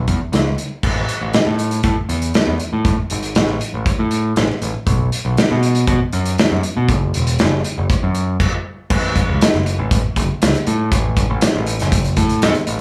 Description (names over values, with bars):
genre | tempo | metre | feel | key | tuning
indie rock | 119 BPM | 4/4 | straight | unclear | A4 = 439 Hz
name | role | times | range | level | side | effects
growling picked electric bass | bass | 0.0-12.8 s | E1 to B2 | -20 LUFS | equal | overdrive
loose indie drum kit | drums | 0.1-12.8 s | crash cymbal, hi-hat, kick drum, snare drum | -20 LUFS | equal | none
room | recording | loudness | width
light reverb | small room ambience | -17 LUFS | mono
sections
0.8-8.9 A section; 8.9-12.8 B section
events
none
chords
none